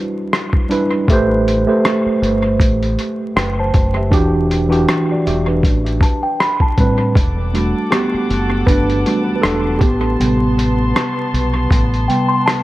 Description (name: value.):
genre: lo-fi hip hop.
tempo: 79 BPM.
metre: 4/4.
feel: swing 57% on 16ths.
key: A dorian.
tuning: A4 = 440 Hz.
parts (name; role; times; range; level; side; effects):
tine electric piano; accompaniment; 0.0-12.6 s; A2 to A5; -16 LUFS; right 1 dB; medium stereo tremolo, cassette tape, low-pass filter, dub echo.
lo-fi sampler-style drum kit; drums; 0.3-12.6 s; hi-hat, kick drum, rim click; -17 LUFS; equal; overdrive, dub echo.
deep dub fingered electric bass; bass; 1.1-12.1 s; E1 to B1; -19 LUFS; equal; none.
small celesta; second line; 6.0-7.1, 12.1-12.6 s; G5 to C6; -20 LUFS; left 1 dB; low-pass filter, dub echo.
warm studio string section; sustained chords; 7.1-12.6 s; B3 to D6; -24 LUFS; left 1 dB; low-pass filter.
room: light reverb.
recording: echo-heavy mix, vinyl crackle.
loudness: -13 LUFS.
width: side -17 dB against mid.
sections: 0.0-7.2 A section; 7.2-12.6 B section.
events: tine electric piano solo 7.2-12.6.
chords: 0.0 G6; 1.1 Am9; 4.1 Em9; 5.6 Am9; 7.2 Em11; 9.8 Am9.